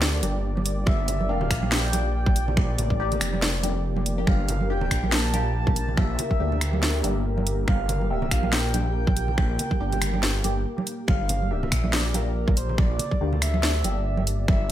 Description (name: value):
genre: deep dubstep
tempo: 141 BPM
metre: 4/4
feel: swing 57% on 16ths, half-time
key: G dorian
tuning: A4 = 440 Hz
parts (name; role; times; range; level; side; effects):
- dark analog pad; sustained chords; 0.0-14.7 s; Bb3 to D5; -33 LUFS; equal; chorus
- dark detuned saw bass; bass; 0.0-14.7 s; F1 to D2; -26 LUFS; equal; none
- garage drum kit; drums; 0.0-14.7 s; finger snaps, hi-hat, snare drum; -27 LUFS; equal; none
- filtered dub chord stab; stabs; 0.2-14.0 s; Bb3 to G4; -35 LUFS; left 2 dB; phaser, lush chorus, dub echo
- congas; percussion; 0.2-14.6 s; none; -31 LUFS; right 4 dB; none
- breathy flute-like synth lead; melody; 0.9-14.7 s; Bb4 to A5; -32 LUFS; equal; wide subtle chorus, dub echo
- electronic kick drum; drums; 0.9-14.6 s; none; -23 LUFS; equal; none
room: light reverb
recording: none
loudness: -22 LUFS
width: side -12 dB against mid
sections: 0.0-14.7 A section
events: break 10.7-11.1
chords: 0.0 Gm